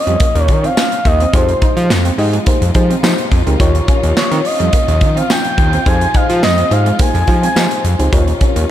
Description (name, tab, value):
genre	early-eighties boogie funk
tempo	106 BPM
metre	4/4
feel	straight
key	F minor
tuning	A4 = 442 Hz
part	expressive synth lead	melody	0.0-7.8 s	C5 to Ab5	-18 LUFS	equal	chorus, slapback echo
part	warm studio string section	sustained chords	0.0-8.7 s	F3 to F4	-25 LUFS	left 2 dB	none
part	electric guitar through a small old amp	riff	0.1-8.5 s	G3 to F4	-24 LUFS	right 4 dB	ensemble chorus, slapback echo
part	fat analog bass	bass	0.1-8.7 s	Db2 to F3	-15 LUFS	equal	none
part	modern studio drum kit	drums	0.1-8.7 s	handclaps, hi-hat, kick drum, snare drum	-15 LUFS	equal	none
part	tambourine	percussion	0.8-7.7 s	none	-30 LUFS	left 6 dB	none
part	mellow FM electric piano	accompaniment	1.3-8.7 s	Eb4 to Eb5	-20 LUFS	left 2 dB	chorus, slapback echo
room	light reverb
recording	none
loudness	-11 LUFS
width	side -12 dB against mid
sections	0.0-8.7 A section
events	none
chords	0.0 Eb7sus2; 1.3 Fm9; 3.6 Eb9; 5.9 Fm9; 8.1 Eb9